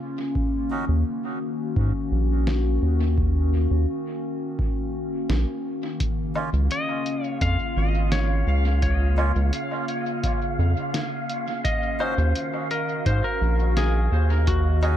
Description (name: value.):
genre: ambient dub.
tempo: 85 BPM.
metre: 4/4.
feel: straight.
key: Eb minor.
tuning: A4 = 440 Hz.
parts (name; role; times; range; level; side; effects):
warbly tape-like pad; sustained chords; 0.0-15.0 s; Db3 to Eb5; -29 LUFS; left 2 dB; chorus, built-in reverb.
electronic kick drum; drums; 0.4-14.6 s; none; -28 LUFS; equal; none.
melodica; stabs; 0.7-0.9, 6.4-15.0 s; Bb3 to Gb4; -35 LUFS; right 4 dB; dub echo.
round analog bass; bass; 0.9-15.0 s; Ab1 to Ab2; -20 LUFS; equal; none.
lo-fi sampler-style drum kit; drums; 2.5-15.0 s; hi-hat, snare drum, woodblock; -32 LUFS; equal; dub echo.
wind-like tuned noise texture; texture; 6.7-15.0 s; F5; -33 LUFS; right 1 dB; built-in reverb.
clean lap steel guitar; melody; 6.7-15.0 s; Gb4 to F5; -29 LUFS; left 2 dB; dub echo.
room: light reverb.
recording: echo-heavy mix.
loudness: -21 LUFS.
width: side -11 dB against mid.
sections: 0.0-15.0 A section.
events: none.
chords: 0.4 Ebm7; 6.0 Db6; 11.6 Ebm7.